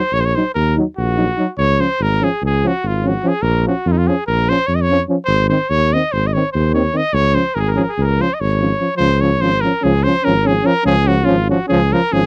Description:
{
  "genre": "balkan folk, Balkan brass band",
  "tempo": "290 BPM (eighths)",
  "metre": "9/8",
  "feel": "straight",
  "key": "Db major",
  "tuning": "A4 = 440 Hz",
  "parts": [
    { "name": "clear trumpet", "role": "melody", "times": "0.0-12.3 s", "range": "Eb4 to Eb5", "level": "-20 LUFS", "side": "equal", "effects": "none" },
    { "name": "dark tuba", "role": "bass", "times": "0.1-12.3 s", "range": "Ab1 to F2", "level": "-20 LUFS", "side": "equal", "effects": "none" },
    { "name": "mellow euphonium", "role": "accompaniment", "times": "0.4-12.2 s", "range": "C4 to Eb4", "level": "-22 LUFS", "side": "equal", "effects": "none" },
    { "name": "warm trombone", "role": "accompaniment", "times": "0.4-12.2 s", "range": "Eb3 to Gb3", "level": "-23 LUFS", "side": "equal", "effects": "none" }
  ],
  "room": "little or no reverb",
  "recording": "dry, close 1970s-style studio recording",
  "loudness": "-16 LUFS",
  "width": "mono",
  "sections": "0.0-9.0 A section; 9.0-12.3 B section",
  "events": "none",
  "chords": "0.0 Ebm; 1.6 Db; 3.4 Bbm; 5.3 Ab; 7.1 Db"
}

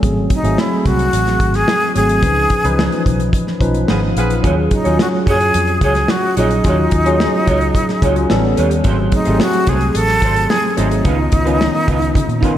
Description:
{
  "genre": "polished 1980s jazz-funk pop",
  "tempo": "109 BPM",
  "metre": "4/4",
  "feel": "straight",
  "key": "Eb minor",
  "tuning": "A4 = 442 Hz",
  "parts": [
    { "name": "tine electric piano", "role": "accompaniment", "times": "0.0-12.6 s", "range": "Eb3 to Cb5", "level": "-18 LUFS", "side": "left 1 dB", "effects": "analog chorus" },
    { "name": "vintage muted fingered electric bass", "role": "bass", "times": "0.0-12.4 s", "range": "Ab1 to Db3", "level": "-18 LUFS", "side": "equal", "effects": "none" },
    { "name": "modern studio drum kit", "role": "drums", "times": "0.0-12.6 s", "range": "hi-hat, kick drum, snare drum", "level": "-19 LUFS", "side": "equal", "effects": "none" },
    { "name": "breathy jazz flute", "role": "melody", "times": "0.3-12.6 s", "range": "Eb4 to A4", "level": "-18 LUFS", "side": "equal", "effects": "slapback echo" },
    { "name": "mellow horn section", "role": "second line", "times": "3.9-4.3 s", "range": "Cb4 to Cb5", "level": "-24 LUFS", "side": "equal", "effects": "slapback echo" },
    { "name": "electric guitar at the edge of break-up", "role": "riff", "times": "4.4-12.6 s", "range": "Eb4 to Db5", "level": "-23 LUFS", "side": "right 5 dB", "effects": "analog chorus, slapback echo" }
  ],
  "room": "moderate lush hall reverb, RT60 2.0 s, small room ambience",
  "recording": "big arena sound",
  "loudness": "-12 LUFS",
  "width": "side -11 dB against mid",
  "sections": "0.0-12.6 A section",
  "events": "band accent 2.2-4.4",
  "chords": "0.0 Ab7b9; 2.2 Db9; 4.4 Ebm11; 8.3 A9; 8.9 Ab7b9; 11.1 Db9"
}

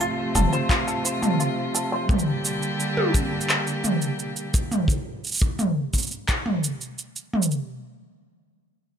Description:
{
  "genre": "folktronica",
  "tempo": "86 BPM",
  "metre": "4/4",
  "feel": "straight",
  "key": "unclear",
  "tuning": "A4 = 441 Hz",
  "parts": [
    { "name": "warm string quartet", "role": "sustained chords", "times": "0.0-4.9 s", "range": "C3 to G4", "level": "-27 LUFS", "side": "right 1 dB", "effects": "none" },
    { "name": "bluegrass banjo", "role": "arpeggios", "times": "0.0-2.1 s", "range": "F4 to C5", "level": "-28 LUFS", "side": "left 1 dB", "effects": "low-pass filter, ping-pong delay" },
    { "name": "minimal click drum kit", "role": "drums", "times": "0.0-7.6 s", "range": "handclaps, shaker, toms", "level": "-24 LUFS", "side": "right 1 dB", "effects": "none" },
    { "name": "round analog bass", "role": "bass", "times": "0.4-0.5 s", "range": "F1", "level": "-23 LUFS", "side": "equal", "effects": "tube saturation" },
    { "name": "kick drum", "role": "drums", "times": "0.4-6.4 s", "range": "none", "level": "-25 LUFS", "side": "equal", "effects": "none" }
  ],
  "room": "light reverb, small room ambience",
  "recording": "none",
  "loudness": "-22 LUFS",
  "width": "side -8 dB against mid",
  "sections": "0.0-7.7 A section",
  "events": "filter sweep on five-string banjo 0.0-2.1",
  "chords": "0.0 F; 2.1 Gm; 4.9 N.C."
}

